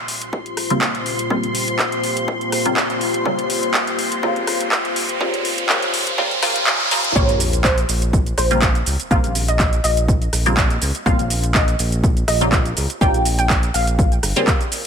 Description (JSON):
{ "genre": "deep house", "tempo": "123 BPM", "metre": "4/4", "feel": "swing 54% on 16ths", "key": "Bb dorian", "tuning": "A4 = 438 Hz", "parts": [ { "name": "deep dark ambient pad", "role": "sustained chords", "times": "0.2-7.1 s", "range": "Bb2 to C5", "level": "-26 LUFS", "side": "left 2 dB", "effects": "chorus, built-in reverb, sidechain pumping" }, { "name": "filtered dub chord stab", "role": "stabs", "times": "0.0-14.9 s", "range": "C3 to F4", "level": "-23 LUFS", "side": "equal", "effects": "phaser, analog chorus, sidechain pumping, tape echo" }, { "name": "riser and sub drop", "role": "sound effects", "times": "2.0-9.1 s", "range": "none", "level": "-26 LUFS", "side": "right 1 dB", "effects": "none" }, { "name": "soft string machine", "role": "texture", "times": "0.0-7.2 s", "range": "C6", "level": "-29 LUFS", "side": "equal", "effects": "ensemble chorus, sidechain pumping" }, { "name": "deep house drum kit", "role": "drums", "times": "0.1-14.8 s", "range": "handclaps, hi-hat, rim click, shaker", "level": "-22 LUFS", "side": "equal", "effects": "overdrive, high-pass filter on snare, high-pass filter on hats, high-pass filter on perc" }, { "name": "electronic kick drum", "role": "drums", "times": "0.3-14.6 s", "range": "none", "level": "-19 LUFS", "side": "equal", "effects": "high-pass filter on kick, high-pass filter on room" }, { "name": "soft round pluck", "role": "melody", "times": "7.2-14.9 s", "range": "C5 to G5", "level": "-23 LUFS", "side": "equal", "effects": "ensemble chorus, vintage 12-bit sampler grit, digital delay" }, { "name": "smooth synth bass", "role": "bass", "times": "7.2-14.3 s", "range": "G1 to Db2", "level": "-20 LUFS", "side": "equal", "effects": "sidechain pumping" } ], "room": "light reverb", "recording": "high-pass filter", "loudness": "-16 LUFS", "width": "side -7 dB against mid", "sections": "0.0-7.2 A section; 7.2-14.9 B section", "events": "build-up 0.0-7.2; riser 2.0-7.2; drop 7.2-14.9; impact 7.2-9.1", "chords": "0.0 Bbm69", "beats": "0.33 0.82 | 1.30 1.79 2.28 2.77 | 3.25 3.74 4.23 4.72 | 5.21 5.69 6.18 6.67 | 7.16 7.64 8.13 8.62 | 9.11 9.60 10.08 10.57 | 11.06 11.55 12.04 12.52 | 13.01 13.50 13.99 14.47" }